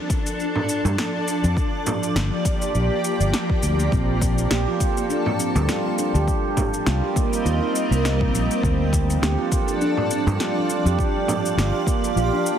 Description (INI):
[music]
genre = organic downtempo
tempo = 102 BPM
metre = 4/4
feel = swing 56% on 16ths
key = unclear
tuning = A4 = 441 Hz
[part]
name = granular cloud pad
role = sustained chords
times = 0.0-12.6 s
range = F3 to Eb5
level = -25 LUFS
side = equal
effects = built-in reverb, sidechain pumping
[part]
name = electronic kick drum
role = drums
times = 0.1-12.0 s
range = none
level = -23 LUFS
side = left 1 dB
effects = overdrive, small room ambience
[part]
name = electronic shaker and snare drum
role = drums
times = 0.1-12.6 s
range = none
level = -29 LUFS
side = left 1 dB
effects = overdrive, small room ambience
[part]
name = frame drum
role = percussion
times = 0.6-11.4 s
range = none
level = -29 LUFS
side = right 2 dB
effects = none
[part]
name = fretless electric bass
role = bass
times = 0.8-12.3 s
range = G1 to G2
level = -21 LUFS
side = left 1 dB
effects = sidechain pumping
[part]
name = handpan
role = arpeggios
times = 3.9-12.5 s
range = G3 to G4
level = -24 LUFS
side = right 3 dB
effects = tape echo
[sound]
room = light reverb, digital ambience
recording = heavily compressed radio sound, multiband compression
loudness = -19 LUFS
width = side -9 dB against mid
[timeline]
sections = 0.0-12.6 A section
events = none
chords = 0.0 Dm; 1.6 Gm7; 3.9 Bbmaj7; 6.3 Cm7; 8.6 Dm; 11.0 Gm7